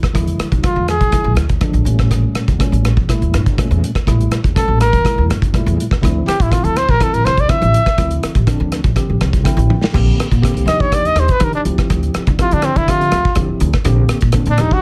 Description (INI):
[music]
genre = electric jazz fusion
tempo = 122 BPM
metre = 4/4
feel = straight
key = D minor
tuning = A4 = 443 Hz
[part]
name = upright bass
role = bass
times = 0.0-14.8 s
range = G1 to Eb3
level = -19 LUFS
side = equal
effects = none
[part]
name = modern studio drum kit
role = drums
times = 0.0-14.8 s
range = crash cymbal, hi-hat, kick drum, rim click, snare drum, toms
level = -20 LUFS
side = equal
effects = none
[part]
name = mellow tine electric piano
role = accompaniment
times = 0.1-14.8 s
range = Bb2 to G5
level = -24 LUFS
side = equal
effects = none
[part]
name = mellow trumpet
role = melody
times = 0.7-1.3, 4.6-14.8 s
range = C4 to E5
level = -19 LUFS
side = equal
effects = none
[sound]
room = little or no reverb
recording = none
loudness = -15 LUFS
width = mono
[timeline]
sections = 0.0-9.9 A section; 9.9-14.8 A section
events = trumpet solo 0.0-14.8; tine electric piano fill 9.2-9.9; drum fill 9.7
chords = 0.0 E7b9; 1.9 A7b9; 6.0 Dm9; 9.9 Bb69; 10.7 Ebmaj9; 11.7 Dm11; 13.9 Bb69